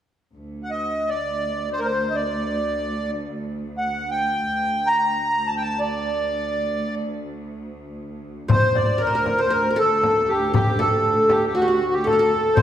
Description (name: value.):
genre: Arabic maqam ensemble.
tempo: free time.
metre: none.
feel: none.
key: D maqam hijaz.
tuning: A4 = 440 Hz.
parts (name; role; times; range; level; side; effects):
bright studio cello section; drone; 0.3-12.6 s; D2; -30 LUFS; right 1 dB; none.
accordion; melody; 0.6-12.6 s; F#4 to Bb5; -21 LUFS; equal; light tremolo tuning.
qanun; second line; 8.5-12.6 s; F#4 to C5; -23 LUFS; right 1 dB; none.
frame drum; percussion; 8.5-12.6 s; none; -23 LUFS; left 2 dB; none.
room: wet recital hall reverb, RT60 1.8 s.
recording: recorded in a church or concert hall.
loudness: -19 LUFS.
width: side -10 dB against mid.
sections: 0.4-8.5 A section; 8.5-12.6 B section.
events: none.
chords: none.